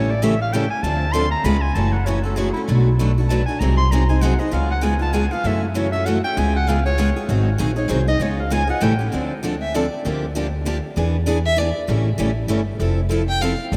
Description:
acoustic string swing (jazz manouche); 196 BPM; 3/4; swing 58% on 8ths; D minor from 9.1 s; A4 = 440 Hz
clear clarinet; second line; 0.0-9.1 s; E4 to C6; -28 LUFS; equal
picked steel-string acoustic guitar; accompaniment; 0.0-13.8 s; B2 to B#4; -25 LUFS; equal
picked steel-string acoustic guitar; accompaniment; 0.0-13.8 s; B2 to C#5; -31 LUFS; equal
upright bass; bass; 0.0-13.8 s; F1 to F#2; -23 LUFS; equal
warm violin; melody; 9.6-13.6 s; D5 to G5; -28 LUFS; equal
moderate cathedral reverb, RT60 6.6 s; in a vast, echoing space; -20 LUFS; mono
0.0-1.8 A section; 1.8-9.1 A section; 9.1-13.8 A section
clarinet solo 0.0-9.1; violin solo 9.1-13.8
0.0 A7; 0.8 Dm7; 1.5 C#7; 1.8 F#m7; 2.7 Bm7; 3.6 G#7/B#; 4.5 C#7; 5.5 F#m7; 6.4 C#7; 7.3 G#7; 8.2 C#7; 8.8 A7; 9.1 Dm7; 10.0 Gm7/D; 11.0 E7; 11.9 A7; 12.8 Fmaj7

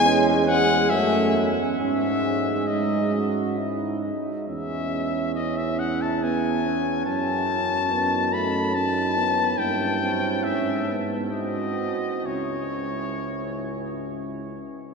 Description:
classical, hymn-like piece for brass band; 62-72 BPM; 3/4; rubato; C# minor; A4 = 438 Hz
clear cornet; melody; 0.0-14.1 s; C#5 to B5; -25 LUFS; left 3 dB
mellow French horn section; second line; 0.0-14.7 s; C#4 to F#4; -30 LUFS; right 5 dB
clear trombone section; accompaniment; 0.0-14.7 s; G#3 to F#4; -31 LUFS; left 1 dB
dark euphonium; accompaniment; 0.0-14.6 s; G#3 to C#4; -30 LUFS; right 3 dB
warm tuba; bass; 0.0-14.7 s; C#2 to G#2; -29 LUFS; right 1 dB
wet cathedral reverb, RT60 6.9 s; minimal, uncompressed stereo recording; -22 LUFS; side -4 dB against mid
0.0-14.9 A section
0.0 C#m/E; 0.9 F#m; 1.8 G#sus4; 3.6 G#5; 4.5 C#m/E; 7.1 D#m7b5/F#; 9.6 Gdim7; 10.4 C#m/G#; 11.3 G#7; 12.2 C#m

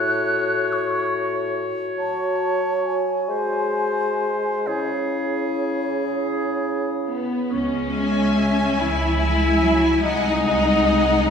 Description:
classical; 41-49 BPM (dotted quarters); 6/8; rubato; C# minor; A4 = 441 Hz
clear oboe; second line; 0.0-7.2 s; G#4 to C#5; -28 LUFS; equal
mellow hollow concert flute; second line; 0.0-7.0 s; C#5 to F#6; -27 LUFS; left 1 dB
warm clarinet; second line; 0.0-7.1 s; E4 to F#4; -28 LUFS; left 4 dB
warm bassoon; accompaniment; 0.0-7.1 s; A2 to G#3; -26 LUFS; right 2 dB
rich chamber viola section; accompaniment; 7.1-11.3 s; B3 to E4; -20 LUFS; left 1 dB
bright symphonic cello section; bass; 7.5-11.3 s; E3 to G#3; -24 LUFS; equal
clear symphonic double bass section; bass; 7.5-11.1 s; B#1 to C#2; -25 LUFS; right 1 dB
rich studio violin section; melody; 7.9-11.3 s; G#5; -31 LUFS; left 2 dB
warm studio violin section; second line; 7.9-11.3 s; D#5 to G#5; -26 LUFS; left 1 dB
wet concert hall reverb, RT60 1.7 s; recorded in a church or concert hall; -19 LUFS; side -7 dB against mid
0.0-7.5 A section; 7.5-11.3 B section
0.0 F#m/A; 2.0 F#m; 3.3 G#7; 4.7 C#m; 10.0 G#7/B#

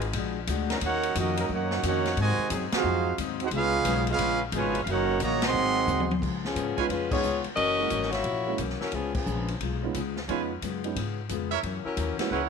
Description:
jazz, big band swing; 178 BPM; 4/4; swing 65% on 8ths; Db mixolydian from 6.2 s; A4 = 440 Hz
clear trumpet section; melody; 0.0-6.1 s; Db4 to C6; -28 LUFS; right 2 dB; tape echo
warm trombone section; second line; 0.0-6.1 s; Cb3 to Gb4; -30 LUFS; right 12 dB
picked plugged-in steel-string acoustic guitar; accompaniment; 0.0-12.5 s; Gb2 to C5; -35 LUFS; left 14 dB
upright bass; bass; 0.0-12.5 s; Gb1 to Ab2; -32 LUFS; left 2 dB
swinging big-band drum kit; drums; 0.0-12.4 s; crash cymbal, hi-hat, kick drum, ride cymbal, snare drum, toms; -34 LUFS; left 2 dB
warm trombone section; sustained chords; 0.7-5.5 s; Eb3 to Bb4; -38 LUFS; left 2 dB
warm saxophone section; melody; 6.5-9.6, 11.9-12.4 s; F3 to Eb5; -28 LUFS; left 4 dB
dark upright piano; accompaniment; 6.8-12.3 s; Ab3 to Ab4; -34 LUFS; right 11 dB
bright trumpet section; stabs; 6.8-6.9, 10.3-12.5 s; Fb4 to Ab5; -32 LUFS; right 11 dB
light reverb, studio ambience; 1960s-style stereo with parts hard left and right; -25 LUFS; side -6 dB against mid
0.0-6.2 A section; 6.2-12.5 B section
band accent 2.7, 5.4, 7.1, 9.1; drum fill 5.9-6.2
0.1 Bb7b13; 0.8 Ebm7; 2.2 Ab7; 3.5 Db7; 4.9 Ebm7; 5.5 Ab7; 6.2 Db7; 7.6 Gb7; 8.9 Db7; 11.6 Gb7

